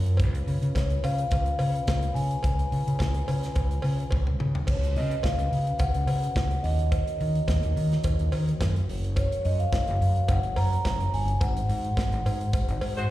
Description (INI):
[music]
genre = disco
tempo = 107 BPM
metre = 4/4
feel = straight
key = unclear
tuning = A4 = 440 Hz
[part]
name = mellow French horn section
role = sustained chords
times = 0.0-13.1 s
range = C#3 to C#5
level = -40 LUFS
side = left 1 dB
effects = none
[part]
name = overdriven fingered electric bass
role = bass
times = 0.0-13.0 s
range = F#1 to D#3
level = -25 LUFS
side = equal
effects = none
[part]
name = modern studio drum kit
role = drums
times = 0.1-13.1 s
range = crash cymbal, hi-hat, kick drum, snare drum, toms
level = -30 LUFS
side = equal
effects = none
[part]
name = cowbell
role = percussion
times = 0.2-13.0 s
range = none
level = -39 LUFS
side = right 2 dB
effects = slapback echo
[part]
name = vibraphone with soft mallets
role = melody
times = 0.8-13.1 s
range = C#5 to A#5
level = -31 LUFS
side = equal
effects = slapback echo
[part]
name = mellow horn section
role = stabs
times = 13.0 s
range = G#3 to B#4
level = -29 LUFS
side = left 3 dB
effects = none
[sound]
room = studio reverb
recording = live gig heard through the venue's PA, recital hall reverb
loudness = -23 LUFS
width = side -15 dB against mid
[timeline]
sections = 0.0-4.7 A section; 4.7-13.1 B section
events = drum fill 4.1-4.7; band accent 11.4-13.1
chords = 0.2 C#7; 4.7 C#7sus4; 6.6 D#m7; 8.9 F#; 11.4 G#7